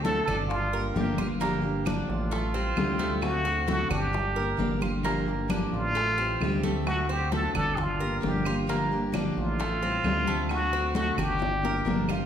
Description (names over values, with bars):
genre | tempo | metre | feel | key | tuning
latin, Cuban son and guajira | 132 BPM | 4/4 | straight | G minor | A4 = 440 Hz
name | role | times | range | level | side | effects
trumpet with plunger mute | melody | 0.0-12.1 s | F4 to A4 | -29 LUFS | equal | none
picked steel-string acoustic guitar | accompaniment | 0.0-12.3 s | D3 to G4 | -32 LUFS | left 2 dB | none
Cuban tres | arpeggios | 0.0-12.3 s | A3 to Bb4 | -34 LUFS | right 3 dB | none
fat analog bass | bass | 0.0-12.3 s | G1 to D2 | -31 LUFS | equal | none
congas | percussion | 0.0-12.3 s | none | -34 LUFS | equal | none
bongos | percussion | 0.1-12.2 s | none | -38 LUFS | left 4 dB | none
claves | percussion | 0.3-12.3 s | none | -41 LUFS | right 4 dB | none
room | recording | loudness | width
wet recital hall reverb, RT60 1.3 s | recorded in a church or concert hall | -25 LUFS | side -9 dB against mid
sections
0.0-12.3 A section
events
drum fill 11.4-12.3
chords
0.0 D7; 0.5 Gm7; 2.3 Am7b5; 3.2 D7; 4.1 Gm7; 6.0 Am7b5; 6.9 D7; 7.8 Gm7; 9.6 Am7b5; 10.5 D7; 11.4 Gm7